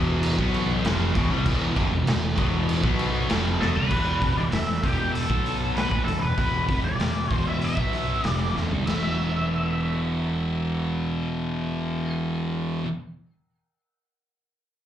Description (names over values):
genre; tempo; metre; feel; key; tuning
stoner and doom metal; 97 BPM; 4/4; straight; unclear; A4 = 439 Hz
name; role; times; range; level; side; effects
string machine, cellos; sustained chords; 0.0-3.9 s; E3 to F#4; -39 LUFS; equal; none
biting overdriven guitar; riff; 0.0-3.9 s; E2 to B3; -30 LUFS; left 1 dB; none
thick fuzz guitar; riff; 0.0-12.9 s; E2 to B3; -30 LUFS; left 6 dB; distortion
thick fuzz guitar; riff; 0.0-12.9 s; E2 to B3; -30 LUFS; right 7 dB; distortion
fuzz fingered electric bass; bass; 0.0-12.8 s; E1 to C2; -28 LUFS; equal; overdrive
raw garage drum kit; drums; 0.2-9.0 s; crash cymbal, hi-hat, kick drum, snare drum, toms; -27 LUFS; equal; none
octave-fuzz lead guitar; melody; 3.6-12.1 s; G4 to E5; -29 LUFS; equal; wah, distortion, slapback echo, ping-pong delay
room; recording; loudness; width
little or no reverb; live gig heard through the venue's PA, club reverb; -22 LUFS; side -10 dB against mid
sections
0.0-3.9 A section; 3.9-8.9 B section; 8.9-11.4 C section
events
drum fill 3.6-3.9, 8.5-8.9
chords
0.0 Em; 3.9 E5; 5.3 B5; 5.9 E5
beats
0.24 0.85 | 1.46 2.07 2.68 3.29 | 3.91 4.52 5.13 5.75 | 6.37 6.99 7.61 8.23 | 8.86 9.49 10.12 10.74